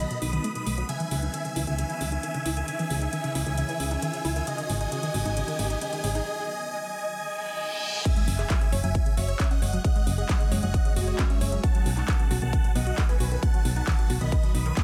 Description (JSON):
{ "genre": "uplifting trance", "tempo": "134 BPM", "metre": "4/4", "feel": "straight", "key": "unclear", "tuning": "A4 = 440 Hz", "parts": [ { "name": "big supersaw lead", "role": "melody", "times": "0.0-14.8 s", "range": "F#4 to D#6", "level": "-34 LUFS", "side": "equal", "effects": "sidechain pumping, dub echo" }, { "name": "shimmering ambient pad", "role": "sustained chords", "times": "0.0-14.8 s", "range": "D#3 to B4", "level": "-40 LUFS", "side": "equal", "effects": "chorus, built-in reverb, phaser, sidechain pumping" }, { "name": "analog pluck", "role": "arpeggios", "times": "0.0-14.8 s", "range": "B2 to C#5", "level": "-37 LUFS", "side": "equal", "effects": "chorus, sidechain pumping, dub echo" }, { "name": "solid FM bass", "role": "bass", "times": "0.0-14.7 s", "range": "F#1 to C#2", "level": "-30 LUFS", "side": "equal", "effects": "sidechain pumping" }, { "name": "riser, reverse cymbal and impact", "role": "sound effects", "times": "1.2-9.8 s", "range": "none", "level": "-41 LUFS", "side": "equal", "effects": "none" }, { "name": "big-room dance drum kit", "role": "drums", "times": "0.1-14.8 s", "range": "crash cymbal, handclaps, hi-hat", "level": "-38 LUFS", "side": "equal", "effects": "none" }, { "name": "electronic kick drum", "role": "drums", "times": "8.1-14.8 s", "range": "none", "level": "-26 LUFS", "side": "equal", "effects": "none" } ], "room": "light reverb", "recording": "none", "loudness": "-26 LUFS", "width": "mono", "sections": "0.0-8.1 A section; 8.1-14.8 B section", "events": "build-up 0.0-8.1; filter sweep on synth arpeggio sound 0.0-8.1; riser 1.2-6.3; reverse cymbal 7.4-8.1; drop 8.1-14.8; impact 8.1-9.8", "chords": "0.0 B; 0.9 C#madd9; 4.5 G#m7; 8.1 F#sus2; 11.6 B7" }